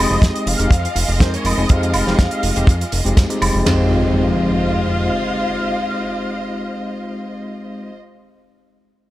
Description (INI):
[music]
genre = nu-disco, nu disco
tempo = 122 BPM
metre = 4/4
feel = straight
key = F minor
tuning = A4 = 441 Hz
[part]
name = wide unison lead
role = melody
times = 0.0-7.9 s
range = C5 to F5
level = -26 LUFS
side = equal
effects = ensemble chorus, tape echo
[part]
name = tine electric piano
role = accompaniment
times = 0.0-7.9 s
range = Ab3 to Bb4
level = -22 LUFS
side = left 1 dB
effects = medium tremolo, sidechain pumping
[part]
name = warm studio violin section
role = sustained chords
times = 0.0-7.9 s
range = Ab3 to Eb5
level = -26 LUFS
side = equal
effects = sidechain pumping
[part]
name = fat analog bass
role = bass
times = 0.0-5.1 s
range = F1 to F2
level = -19 LUFS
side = equal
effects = none
[part]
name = damped 70s drum kit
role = drums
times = 0.2-3.8 s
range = kick drum, ride cymbal, snare drum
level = -13 LUFS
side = equal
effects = small room reverb
[part]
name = damped 70s drum kit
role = drums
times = 0.2-3.5 s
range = hi-hat, snare drum, woodblock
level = -22 LUFS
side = right 1 dB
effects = small room reverb
[part]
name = impact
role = sound effects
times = 3.7-8.0 s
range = none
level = -25 LUFS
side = equal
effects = none
[sound]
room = light reverb, studio ambience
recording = none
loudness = -15 LUFS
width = side -15 dB against mid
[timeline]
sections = 0.0-3.7 A section; 3.7-7.6 B section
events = drop 0.0-3.7; band accent 3.2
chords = 0.0 Fm7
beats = 0.22 0.71 1.20 | 1.70 2.19 2.68 3.17 | 3.66 4.16 4.65 5.14 | 5.63 6.12 6.61 7.11